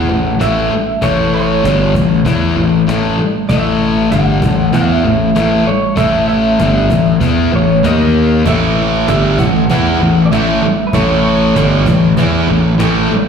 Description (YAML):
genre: quiet-loud alternative rock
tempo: 97 BPM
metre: 4/4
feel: straight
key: A mixolydian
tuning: A4 = 442 Hz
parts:
  - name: electric guitar through a small old amp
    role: melody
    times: 0.0-11.8 s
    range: B4 to F#5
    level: -18 LUFS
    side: right 3 dB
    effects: lush chorus, slapback echo, digital delay
  - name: thick fuzz guitar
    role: riff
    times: 0.0-13.1 s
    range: G2 to E4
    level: -14 LUFS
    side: left 7 dB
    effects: distortion, slapback echo
  - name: fuzz picked electric bass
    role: bass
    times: 0.0-13.1 s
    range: G1 to E2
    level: -15 LUFS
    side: right 2 dB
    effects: overdrive
  - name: cajon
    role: drums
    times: 0.4-12.9 s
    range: none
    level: -23 LUFS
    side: right 1 dB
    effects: none
  - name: thick fuzz guitar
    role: riff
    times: 8.5-13.2 s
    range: G2 to E4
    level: -16 LUFS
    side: right 15 dB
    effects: distortion, slapback echo
room: light reverb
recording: live gig heard through the venue's PA, recital hall reverb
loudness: -10 LUFS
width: side -7 dB against mid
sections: 0.0-13.3 A section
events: none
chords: 0.0 A5; 7.8 D#5; 8.5 A5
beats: 0.41 | 1.02 1.64 2.26 2.88 | 3.50 4.12 4.74 5.36 | 5.98 6.60 7.22 7.84 | 8.46 9.08 9.70 10.32 | 10.94 11.56 12.18 12.80